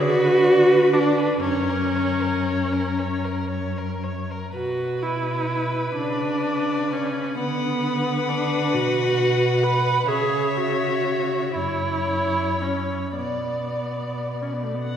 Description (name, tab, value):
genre	classical, slow romantic movement for string quartet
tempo	35-45 BPM (dotted quarters)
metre	6/8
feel	rubato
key	B minor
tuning	A4 = 441 Hz
part	muted violin	melody	0.0-15.0 s	A#4 to F#5	-30 LUFS	left 4 dB	none
part	muted violin	second line	0.0-15.0 s	A#4 to F#5	-29 LUFS	equal	none
part	muted viola	accompaniment	0.0-14.8 s	A3 to B4	-22 LUFS	right 1 dB	none
part	muted cello	bass	0.0-15.0 s	F#2 to D3	-28 LUFS	equal	none
room	wet concert hall reverb, RT60 2.1 s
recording	recorded in a church or concert hall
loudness	-20 LUFS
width	side -9 dB against mid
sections	0.0-15.0 A section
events	none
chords	0.0 Bm/D; 1.4 F#; 4.5 Bm; 7.4 Bm/D; 10.1 C#madd11; 11.6 F#5; 13.2 Bm